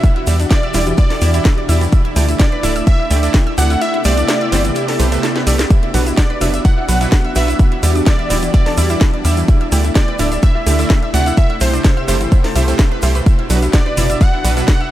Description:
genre	progressive house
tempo	127 BPM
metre	4/4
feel	straight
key	E minor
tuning	A4 = 444 Hz
part	plucky unison lead	melody	0.0-14.9 s	C5 to F#5	-22 LUFS	equal	tape echo
part	airy breathy pad	sustained chords	0.0-14.9 s	B2 to G4	-22 LUFS	equal	chorus, sidechain pumping
part	analog pluck	arpeggios	0.0-14.9 s	E3 to E6	-24 LUFS	equal	chorus, cassette tape, sidechain pumping, tape echo
part	electronic kick drum	drums	0.0-14.8 s	none	-12 LUFS	equal	none
part	house drum kit	drums	0.0-14.9 s	hi-hat, snare drum	-23 LUFS	equal	none
part	tube shaker	percussion	0.0-14.8 s	none	-29 LUFS	right 1 dB	none
part	supersaw stab	stabs	0.3-14.7 s	B2 to E5	-23 LUFS	right 3 dB	sidechain pumping, tape echo
part	tight sequencer bass	bass	0.3-14.6 s	D1 to E2	-15 LUFS	equal	sidechain pumping
room	light reverb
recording	none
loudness	-12 LUFS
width	side -13 dB against mid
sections	0.0-14.9 A section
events	kick drops out 3.8-5.7; drum fill 5.2-5.7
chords	0.0 Em7; 1.9 Dsus2; 3.8 Am7; 5.7 Bm; 7.6 Em7; 9.5 Dsus2; 11.4 Am7; 13.3 Bm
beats	| 0.04 0.51 0.98 1.45 | 1.93 2.40 2.87 3.34 | 3.81 4.29 4.76 5.23 | 5.71 6.18 6.65 7.12 | 7.59 8.07 8.54 9.01 | 9.48 9.96 10.43 10.90 | 11.37 11.85 12.32 12.79 | 13.26 13.74 14.21 14.68

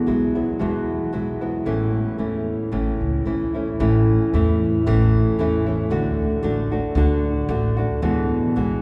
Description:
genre	mexican folk, mariachi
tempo	113 BPM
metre	2/4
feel	swing 54% on 8ths, rubato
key	A major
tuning	A4 = 440 Hz
part	nylon-string guitar	accompaniment	0.0-8.8 s	E2 to F#4	-23 LUFS	equal	none
part	upright bass	bass	0.1-8.8 s	A1 to E2	-25 LUFS	equal	none
room	wet cathedral reverb, RT60 5.2 s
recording	recorded in a church or concert hall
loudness	-21 LUFS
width	mono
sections	0.0-3.8 A section; 3.8-8.8 A section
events	none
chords	0.0 Eadd9; 1.7 A; 5.9 D; 8.0 Eadd9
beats	0.08 | 0.61 1.14 | 1.67 2.19 | 2.72 3.26 | 3.81 4.34 | 4.87 5.39 | 5.92 6.44 | 6.96 7.50 | 8.03 8.57

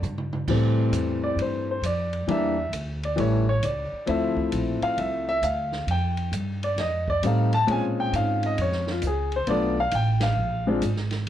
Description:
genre	jazz piano trio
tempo	133 BPM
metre	4/4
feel	swing 66% on 8ths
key	unclear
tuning	A4 = 440 Hz
part	upright bass	bass	0.0-11.3 s	Ab1 to Bb2	-26 LUFS	right 2 dB	none
part	open jazz drum kit	drums	0.0-11.3 s	crash cymbal, hi-hat, kick drum, ride cymbal, snare drum, toms	-36 LUFS	right 1 dB	none
part	clear concert grand piano	melody	0.5-10.8 s	E3 to A5	-24 LUFS	left 2 dB	plate reverb
room	moderate small room reverb, RT60 0.5 s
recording	worn, warbling old tape, cassette tape, warbly pitch drift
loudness	-22 LUFS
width	side -11 dB against mid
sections	0.5-11.3 A section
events	drum fill 0.0-0.5; band accent 10.1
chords	0.5 Am7; 2.3 Em7b5; 3.2 A7; 4.1 Dm9; 5.9 F7; 7.7 Bbm7; 9.5 Bm7b5; 10.4 Bb7(no3)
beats	0.02 | 0.47 0.92 1.37 1.82 | 2.27 2.72 3.17 3.62 | 4.08 4.53 4.98 5.43 | 5.88 6.33 6.78 7.23 | 7.68 8.12 8.57 9.02 | 9.47 9.92 10.37 10.82 | 11.27

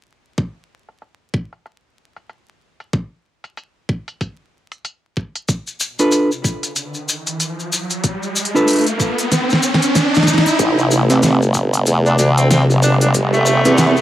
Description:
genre	glitch hop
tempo	94 BPM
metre	4/4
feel	swing 59% on 16ths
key	A minor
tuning	A4 = 442 Hz
part	electronic kick drum	drums	0.4-13.3 s	none	-20 LUFS	equal	high-pass filter on kick
part	pop drum kit	drums	0.4-13.9 s	hi-hat, snare drum	-18 LUFS	equal	low-pass filter on hats, low-pass filter on snare
part	maracas	percussion	5.5-14.0 s	none	-23 LUFS	left 2 dB	none
part	riser	sound effects	6.9-14.0 s	none	-20 LUFS	equal	none
part	mellow electric guitar	stabs	6.0-14.0 s	C4 to B4	-17 LUFS	right 1 dB	sidechain pumping, low-pass filter, tape echo
part	warm analog pad	sustained chords	10.6-14.0 s	C3 to B4	-18 LUFS	left 1 dB	chorus, sidechain pumping
part	formant-sweep wobble bass	bass	10.6-13.9 s	G1 to E2	-16 LUFS	equal	chorus, high-pass filter
part	bright tenor saxophone	melody	12.1-14.0 s	A3 to D4	-18 LUFS	equal	low-pass filter, tape echo
room	wet studio reverb, RT60 0.5 s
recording	vinyl crackle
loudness	-14 LUFS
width	side -13 dB against mid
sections	0.4-10.6 A section; 10.6-14.0 B section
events	riser 6.9-10.6, 10.6-14.0; kick drops out 9.3-10.6; drum fill 9.3-10.6; build-up 10.6-14.0; filter sweep on analog synth pad 10.6-14.0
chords	0.4 N.C.; 5.5 Dm6; 10.6 Am7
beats	| 0.38 1.02 1.66 2.30 | 2.94 3.57 4.21 4.85 | 5.49 6.13 6.76 7.40 | 8.04 8.68 9.32 9.96 | 10.60 11.23 11.87 12.51 | 13.15 13.79

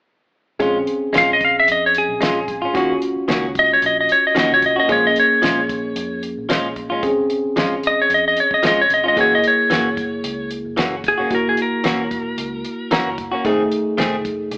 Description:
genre	straight-eighth soul blues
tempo	112 BPM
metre	4/4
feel	swing 54% on 16ths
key	unclear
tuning	A4 = 442 Hz
part	tine electric piano	accompaniment	0.6-14.6 s	A3 to Bb5	-22 LUFS	equal	none
part	direct-recorded clean electric guitar	stabs	0.6-14.2 s	Eb3 to G#4	-22 LUFS	equal	none
part	vintage muted fingered electric bass	bass	0.6-14.6 s	Fb1 to F2	-38 LUFS	equal	none
part	damped 70s drum kit	drums	0.6-14.6 s	hi-hat, kick drum, snare drum	-24 LUFS	equal	none
part	clean lap steel guitar	melody	1.2-13.2 s	Ab4 to F5	-16 LUFS	equal	none
room	moderate large studio reverb, RT60 1.3 s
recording	band playing live in one room, AM radio sound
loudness	-15 LUFS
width	side -33 dB against mid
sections	0.6-14.6 A section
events	tine electric piano fill 12.6-13.4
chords	0.6 Bbm7; 2.7 Ebm7; 4.9 Bbm7; 9.2 Gb7; 13.4 F7#9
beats	| 0.60 1.14 1.68 2.21 | 2.75 3.28 3.82 4.36 | 4.89 5.43 5.96 6.50 | 7.03 7.57 8.10 8.64 | 9.17 9.71 10.24 10.78 | 11.31 11.85 12.38 12.91 | 13.45 13.98 14.52

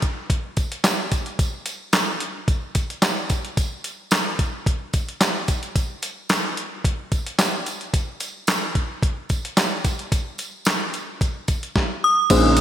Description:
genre	early-eighties boogie funk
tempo	110 BPM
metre	4/4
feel	straight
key	unclear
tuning	A4 = 435 Hz
part	clean 12-bit digital drum machine	drums	0.0-12.6 s	crash cymbal, handclaps, hi-hat, kick drum, snare drum	-21 LUFS	equal	gated reverb
part	tambourine	percussion	0.6-12.6 s	none	-34 LUFS	right 3 dB	none
part	metallic FM bell	melody	12.0-12.6 s	Eb6	-16 LUFS	equal	chorus
part	FM electric piano with soft pad layer	accompaniment	12.3-12.6 s	Bb3 to C5	-18 LUFS	left 1 dB	chorus
part	warm analog pad	sustained chords	12.3-12.6 s	Db3 to Eb4	-22 LUFS	right 1 dB	chorus, tremolo
part	fat analog bass	bass	12.3-12.6 s	Bb1	-18 LUFS	equal	none
room	moderate lush hall reverb, RT60 1.9 s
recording	bright 1980s-style digital production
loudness	-20 LUFS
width	side -11 dB against mid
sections	0.0-12.3 A section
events	none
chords	none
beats	0.30 0.85 | 1.39 1.94 2.48 3.03 | 3.57 4.12 4.66 5.21 | 5.75 6.30 6.85 7.39 | 7.94 8.48 9.03 9.57 | 10.12 10.66 11.21 11.76 | 12.30

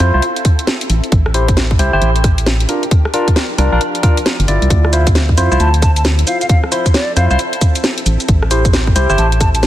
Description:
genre	UK garage, two-step garage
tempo	134 BPM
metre	4/4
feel	swing 63% on 16ths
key	D minor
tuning	A4 = 442 Hz
part	soft string machine	sustained chords	0.0-9.7 s	F3 to Bb4	-26 LUFS	equal	ensemble chorus, sidechain pumping
part	barky tine electric piano	stabs	0.0-9.3 s	D4 to D5	-18 LUFS	equal	phaser, low-pass filter, tape echo
part	organ-like FM bass	bass	0.0-9.7 s	G1 to F2	-14 LUFS	equal	none
part	garage drum kit	drums	0.0-9.7 s	hi-hat, rim click, shaker, snare drum	-19 LUFS	equal	none
part	electronic kick drum	drums	0.4-9.5 s	none	-12 LUFS	equal	none
part	hollow concert flute	melody	5.6-9.6 s	D5 to A5	-20 LUFS	equal	none
room	light reverb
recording	dense, heavily limited modern master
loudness	-11 LUFS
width	side -13 dB against mid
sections	0.0-9.7 A section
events	none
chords	0.0 Dm9 (rootless); 0.9 Am7; 2.7 C9sus4 (rootless); 4.7 Dm9; 8.1 Am7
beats	0.23 0.67 | 1.12 1.57 2.02 2.47 | 2.91 3.36 3.81 4.26 | 4.70 5.15 5.60 6.05 | 6.50 6.94 7.39 7.84 | 8.29 8.73 9.18 9.63

